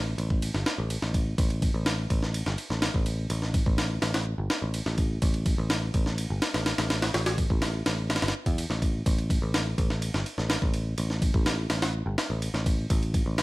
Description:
breakbeat, breaks; 125 BPM; 4/4; straight; A4 = 440 Hz
picked electric bass; bass; 0.0-13.4 s; G1 to E2; -29 LUFS; equal
breakbeat sampler-style drum kit; drums; 0.2-13.4 s; kick drum, ride cymbal, snare drum; -27 LUFS; equal; studio reverb
little or no reverb; vinyl crackle; -25 LUFS; side -20 dB against mid
0.0-13.4 A section

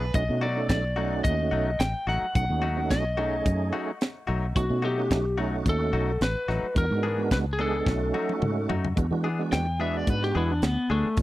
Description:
straight-eighth soul blues; 109 BPM; 4/4; swing 53% on 16ths; A4 = 441 Hz
direct-recorded clean electric guitar; stabs; 0.0-11.1 s; E3 to G#4; -35 LUFS; left 5 dB; spring reverb
fingered electric bass; bass; 0.0-11.2 s; A1 to E3; -28 LUFS; equal
tonewheel organ; accompaniment; 0.1-11.2 s; G3 to A4; -30 LUFS; right 6 dB; slow rotary speaker, overdrive, chorus vibrato
tight funk drum kit; drums; 0.1-11.2 s; hi-hat, kick drum, snare drum, toms; -26 LUFS; equal
lightly driven lead guitar; melody; 0.2-11.2 s; A3 to G5; -29 LUFS; left 2 dB; slapback echo
little or no reverb; dry, close 1970s-style studio recording; -24 LUFS; side -16 dB against mid
0.0-9.0 A section; 9.0-11.2 B section
drum fill 7.9-9.0; lead electric guitar solo 9.0-11.2
0.1 B7; 6.8 E7; 7.9 B7; 9.0 E7

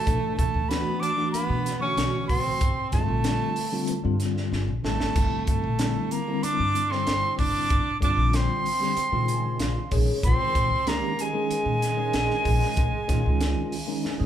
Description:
electric jazz fusion; 94 BPM; 4/4; straight; A4 = 442 Hz
reedy concert flute; melody; 0.0-14.3 s; G#5 to D6; -28 LUFS; right 2 dB
breathy tenor saxophone; second line; 0.0-14.3 s; G#3 to D4; -32 LUFS; right 3 dB
tine electric piano; accompaniment; 0.1-14.3 s; C#3 to G#5; -30 LUFS; left 1 dB; medium stereo tremolo, phaser
upright bass; bass; 0.1-14.3 s; G1 to B2; -27 LUFS; left 1 dB
crisp fusion drum kit; drums; 0.1-14.2 s; hi-hat, kick drum, snare drum, splash cymbal; -28 LUFS; equal
moderate large studio reverb, RT60 1.3 s; band playing live in one room; -22 LUFS; side -10 dB against mid
0.0-14.3 A section
drum fill 4.5-5.2, 14.0; tine electric piano fill 9.0-10.2
0.0 Bm11; 2.6 Gm11; 9.0 A#m11

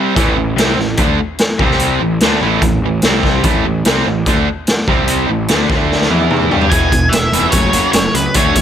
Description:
classic rock; 146 BPM; 4/4; straight; A4 = 440 Hz
crunchy overdriven guitar; riff; 0.0-8.6 s; E2 to G4; -19 LUFS; left 12 dB; spring reverb
overdriven electric guitar; riff; 0.0-8.6 s; E2 to G4; -18 LUFS; right 12 dB
fuzz picked electric bass; bass; 0.2-8.6 s; E1 to G2; -19 LUFS; equal; overdrive
raw garage drum kit; drums; 0.2-8.6 s; hi-hat, kick drum, snare drum, toms; -15 LUFS; equal
octave-fuzz lead guitar; melody; 6.7-8.6 s; B4 to G#5; -16 LUFS; equal; distortion, slapback echo
picked steel-string acoustic guitar; accompaniment; 6.7-8.6 s; E2 to G#4; -25 LUFS; left 2 dB
little or no reverb; -11 LUFS; side -9 dB against mid
0.0-6.7 A section; 6.7-8.6 B section
drum fill 5.9-6.7
0.2 A5; 1.6 C5; 2.0 A5; 3.0 C5; 3.4 A5; 4.9 C5; 5.3 A5; 5.7 D5; 6.1 E5; 6.5 G5; 6.7 E; 7.5 F#m

